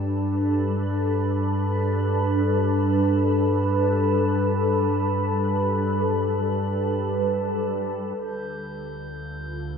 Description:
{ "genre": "ambient", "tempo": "free time", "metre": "none", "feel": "none", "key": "unclear", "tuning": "A4 = 440 Hz", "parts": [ { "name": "glassy FM pad", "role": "sustained chords", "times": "0.0-9.8 s", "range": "D3 to B4", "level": "-23 LUFS", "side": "equal", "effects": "ensemble chorus, built-in reverb, phaser" }, { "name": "warm sub bass", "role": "bass", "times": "0.0-9.8 s", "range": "D2 to G2", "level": "-27 LUFS", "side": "right 1 dB", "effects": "none" }, { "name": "glass harmonica", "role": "texture", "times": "8.2-9.8 s", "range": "G6", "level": "-40 LUFS", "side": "right 1 dB", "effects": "none" } ], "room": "wet cathedral reverb, RT60 6.3 s", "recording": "in a vast, echoing space", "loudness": "-21 LUFS", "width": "side -6 dB against mid", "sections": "0.0-8.2 A section; 8.2-9.8 B section", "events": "none", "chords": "0.0 Gadd9; 8.2 Dm" }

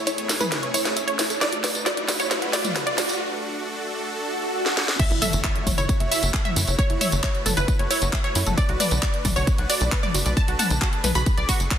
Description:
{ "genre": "uplifting trance", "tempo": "134 BPM", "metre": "4/4", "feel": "straight", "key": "F# minor", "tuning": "A4 = 440 Hz", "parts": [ { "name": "supersaw pad", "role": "sustained chords", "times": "0.0-11.8 s", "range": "A3 to C#5", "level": "-32 LUFS", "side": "equal", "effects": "sidechain pumping" }, { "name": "riser, swell and impact", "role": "sound effects", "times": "0.0-6.8 s", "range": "none", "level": "-31 LUFS", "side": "equal", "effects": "none" }, { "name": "wide unison pluck", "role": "melody", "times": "0.1-11.7 s", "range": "B4 to C#6", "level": "-28 LUFS", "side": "right 1 dB", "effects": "sidechain pumping, tape echo" }, { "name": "tight sequenced synth", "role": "arpeggios", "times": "0.1-11.8 s", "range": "E4 to F#5", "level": "-31 LUFS", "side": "right 1 dB", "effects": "chorus, sidechain pumping, tape echo" }, { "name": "house drum kit", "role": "drums", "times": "0.1-11.8 s", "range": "crash cymbal, handclaps, hi-hat, snare drum, tambourine, toms", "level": "-24 LUFS", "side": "equal", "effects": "soft clipping on snare, sidechain pumping on hats, sidechain pumping on perc, sidechain pumping on toms, sidechain pumping on cymbals" }, { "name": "wide unison pluck", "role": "second line", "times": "5.0-11.7 s", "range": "B4 to C#6", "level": "-33 LUFS", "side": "equal", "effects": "none" }, { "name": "electronic kick drum", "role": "drums", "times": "5.0-11.8 s", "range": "none", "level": "-23 LUFS", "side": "equal", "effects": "none" }, { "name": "tight sequencer bass", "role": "bass", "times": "5.1-11.7 s", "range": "F#1 to F#2", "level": "-25 LUFS", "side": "equal", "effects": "sidechain pumping" } ], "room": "light reverb", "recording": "dense, heavily limited modern master, high-pass filter", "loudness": "-20 LUFS", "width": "side -9 dB against mid", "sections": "0.0-5.0 A section; 5.0-11.8 B section", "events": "build-up 0.0-5.0; drum fill 0.0-3.2, 4.7-5.0; riser 0.0-3.2; filter sweep on synth arpeggio sound 0.0-5.0; break 3.2-5.0; swell 4.3-5.0; drop 5.0-11.8; impact 5.0-6.8", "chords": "0.0 F#m7 (rootless); 1.4 Bm7; 5.0 F#m7; 8.6 Bm7" }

